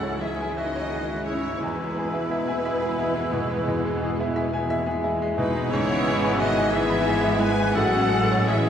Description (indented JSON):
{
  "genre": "classical, romantic movement for piano and orchestra",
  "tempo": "58 BPM (dotted quarters)",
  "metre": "12/8",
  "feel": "rubato",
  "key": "unclear",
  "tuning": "A4 = 442 Hz",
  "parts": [
    { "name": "bright baby grand piano", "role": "melody", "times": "0.0-8.7 s", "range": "E2 to G#5", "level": "-27 LUFS", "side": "left 1 dB", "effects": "none" },
    { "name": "rich studio violin section", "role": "melody", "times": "0.0-8.7 s", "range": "B3 to E4", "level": "-35 LUFS", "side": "left 2 dB", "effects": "none" },
    { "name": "hollow concert flute", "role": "second line", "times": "0.0-8.7 s", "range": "D#4 to B4", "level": "-32 LUFS", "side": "left 1 dB", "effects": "none" },
    { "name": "rich studio violin section", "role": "second line", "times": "0.0-8.7 s", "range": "B4 to G#5", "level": "-30 LUFS", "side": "left 2 dB", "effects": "none" },
    { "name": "warm oboe", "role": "second line", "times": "0.0-8.7 s", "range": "D#4 to B4", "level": "-33 LUFS", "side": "right 1 dB", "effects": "none" },
    { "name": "rich studio viola section", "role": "accompaniment", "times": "0.0-8.7 s", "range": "E3 to C#4", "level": "-34 LUFS", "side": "right 2 dB", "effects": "none" },
    { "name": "clear trombone section", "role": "sustained chords", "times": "0.0-8.7 s", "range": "C#3 to G#3", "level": "-36 LUFS", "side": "right 1 dB", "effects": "none" },
    { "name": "mellow French horn section", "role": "sustained chords", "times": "0.0-8.7 s", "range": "B3 to G#4", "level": "-31 LUFS", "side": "left 2 dB", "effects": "none" },
    { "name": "rich studio cello section", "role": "bass", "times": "0.0-8.7 s", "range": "B2 to G#3", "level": "-32 LUFS", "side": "right 1 dB", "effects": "none" },
    { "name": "rich studio double bass section", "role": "bass", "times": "0.0-8.7 s", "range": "G#1 to E2", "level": "-32 LUFS", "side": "right 1 dB", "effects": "none" },
    { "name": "dark clarinet", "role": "second line", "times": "0.2-8.7 s", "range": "B3 to E4", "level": "-35 LUFS", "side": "left 1 dB", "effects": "none" },
    { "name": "warm bassoon", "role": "accompaniment", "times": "0.2-8.7 s", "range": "G#3", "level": "-35 LUFS", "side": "right 1 dB", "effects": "none" }
  ],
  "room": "wet church reverb, RT60 3.3 s",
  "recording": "recorded in a church or concert hall, vinyl crackle",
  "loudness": "-21 LUFS",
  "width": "side -8 dB against mid",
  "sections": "0.0-8.7 A section",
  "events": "none",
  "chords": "0.0 C#m; 1.6 E; 5.7 E/G#; 7.8 Amaj7"
}